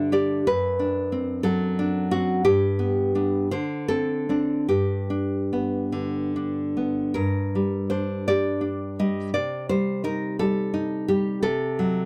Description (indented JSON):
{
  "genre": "romantic piece for solo classical guitar",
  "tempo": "47-62 BPM (dotted quarters)",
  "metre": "6/8",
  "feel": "rubato",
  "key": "G major, G minor from 7.2 s",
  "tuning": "A4 = 440 Hz",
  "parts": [
    { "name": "nylon-string guitar", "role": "solo", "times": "0.0-12.1 s", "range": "F#2 to Eb5", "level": "-24 LUFS", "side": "equal", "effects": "none" }
  ],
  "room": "light reverb",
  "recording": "none",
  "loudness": "-25 LUFS",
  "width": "mono",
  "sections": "0.0-7.2 A section; 7.2-12.1 B section",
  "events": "none",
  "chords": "0.4 D7/F#; 2.4 G; 3.5 D5; 4.7 G; 7.2 Gm; 9.3 Cm; 11.4 D7/C (rootless)"
}